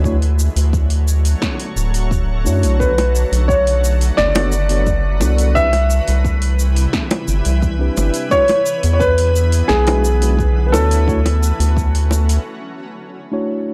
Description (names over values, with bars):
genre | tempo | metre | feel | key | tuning
sunset chillout | 87 BPM | 4/4 | straight | unclear | A4 = 442 Hz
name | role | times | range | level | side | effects
mellow tine electric piano | accompaniment | 0.0-13.7 s | G#3 to D5 | -26 LUFS | equal | none
shimmering ambient pad | sustained chords | 0.0-12.4 s | C3 to C#5 | -29 LUFS | equal | chorus, built-in reverb
round analog bass | bass | 0.0-12.4 s | D1 to F#2 | -17 LUFS | equal | transformer saturation
electronic kick drum | drums | 0.0-11.9 s | none | -25 LUFS | equal | overdrive
deep house drum kit | drums | 0.1-12.4 s | hi-hat, shaker, snare drum | -28 LUFS | equal | overdrive
warm grand piano | melody | 2.8-12.4 s | G#4 to E5 | -20 LUFS | equal | analog delay
bongos | percussion | 3.0-12.3 s | none | -23 LUFS | equal | none
room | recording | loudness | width
digital ambience | dry, gritty hardware recording | -16 LUFS | mono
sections
0.0-13.7 A section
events
break 12.5-13.7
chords
0.0 Dmaj7; 2.8 Bm7; 5.6 Cmaj7; 8.3 E7; 11.1 Dmaj7